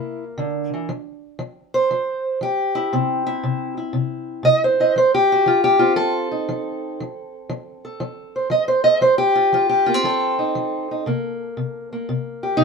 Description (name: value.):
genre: acoustic country blues, solo or duo.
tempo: 118 BPM.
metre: 4/4.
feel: swing 68% on 8ths.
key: unclear.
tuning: A4 = 440 Hz.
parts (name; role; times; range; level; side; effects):
fingerpicked steel-string acoustic guitar; solo; 0.0-12.6 s; C3 to Eb5; -18 LUFS; equal; none.
room: moderate studio reverb, RT60 0.6 s.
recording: minimal, uncompressed stereo recording.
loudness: -17 LUFS.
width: side -5 dB against mid.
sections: 0.0-12.6 A section.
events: none.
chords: 0.0 C7; 0.9 N.C.; 2.9 C; 5.0 F7; 11.0 C5.